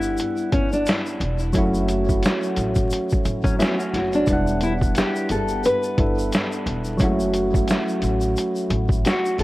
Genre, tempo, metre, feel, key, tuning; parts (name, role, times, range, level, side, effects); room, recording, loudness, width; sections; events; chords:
lo-fi hip hop; 88 BPM; 4/4; swing 57% on 16ths; E dorian; A4 = 440 Hz
nylon-string guitar; melody; 0.0-9.4 s; C#4 to B4; -24 LUFS; left 1 dB; analog delay
soft electric-piano-like synth keys; accompaniment; 0.0-9.4 s; F#3 to F#5; -24 LUFS; equal; chorus, cassette tape, analog delay
upright bass; bass; 0.0-9.4 s; E1 to A1; -27 LUFS; equal
tube shaker; percussion; 0.0-9.4 s; -41 LUFS; left 3 dB; analog delay
lo-fi sampler-style drum kit; drums; 0.2-9.4 s; hi-hat, kick drum, snare drum; -23 LUFS; equal
mellow electric guitar; second line; 3.4-4.2 s; F#3 to F#4; -29 LUFS; left 1 dB; tremolo, analog delay
moderate spring reverb, RT60 2.7 s; echo-heavy mix, vinyl crackle; -19 LUFS; side -18 dB against mid
0.0-4.3 A section; 4.3-9.4 A section
0.0 Em7; 1.5 F#m7; 4.3 Em7; 7.0 F#m7